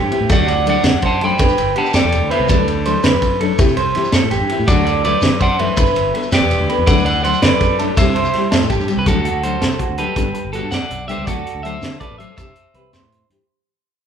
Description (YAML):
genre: highlife guitar band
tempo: 110 BPM (dotted quarters)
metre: 12/8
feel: straight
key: D mixolydian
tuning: A4 = 442 Hz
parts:
  - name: electric guitar through a small old amp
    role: arpeggios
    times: 0.0-13.3 s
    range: F#4 to D5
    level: -20 LUFS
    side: right 2 dB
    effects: spring reverb
  - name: fingered electric bass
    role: bass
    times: 0.0-13.4 s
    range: E1 to D3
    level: -22 LUFS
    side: equal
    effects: none
  - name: nylon-string guitar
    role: accompaniment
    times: 0.1-13.4 s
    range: E3 to A4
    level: -23 LUFS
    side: left 5 dB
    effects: none
  - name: vintage drum kit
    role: drums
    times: 0.1-13.4 s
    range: hi-hat, kick drum, ride cymbal, snare drum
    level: -19 LUFS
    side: right 1 dB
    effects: none
  - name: electric guitar at the edge of break-up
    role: melody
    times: 0.3-13.3 s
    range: F#4 to B5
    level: -21 LUFS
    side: equal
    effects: none
  - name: shekere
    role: percussion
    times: 0.3-13.0 s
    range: none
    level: -24 LUFS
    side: equal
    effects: none
room: moderate large studio reverb, RT60 0.9 s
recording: band playing live in one room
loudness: -13 LUFS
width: side -8 dB against mid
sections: 0.0-9.1 A section; 9.1-13.5 B section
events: fade-out 9.1-13.5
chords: 0.3 D; 1.4 Gadd9; 2.5 D; 3.6 C; 4.7 D; 5.8 Gadd9; 6.9 D; 8.0 C; 9.1 D; 10.2 Gadd9; 11.3 D; 12.4 C